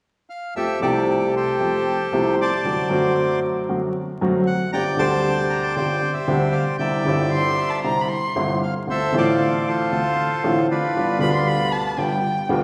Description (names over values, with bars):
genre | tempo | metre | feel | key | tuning
tango | 116 BPM | 4/4 | rubato | F major | A4 = 440 Hz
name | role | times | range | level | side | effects
bandoneon | melody | 0.3-11.7 s | D4 to Bb5 | -26 LUFS | equal | none
clear upright piano | accompaniment | 0.6-12.6 s | G1 to G4 | -23 LUFS | equal | none
warm violin | second line | 7.3-12.6 s | G5 to C6 | -26 LUFS | equal | none
room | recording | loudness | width
wet concert hall reverb, RT60 1.9 s | recorded in a church or concert hall, vinyl crackle | -21 LUFS | mono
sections
0.6-12.6 A section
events
none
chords
0.0 N.C.; 0.6 Fadd9; 2.6 D7/F#; 4.7 Gsus4; 6.8 Cadd9; 8.9 Dm7; 11.0 G7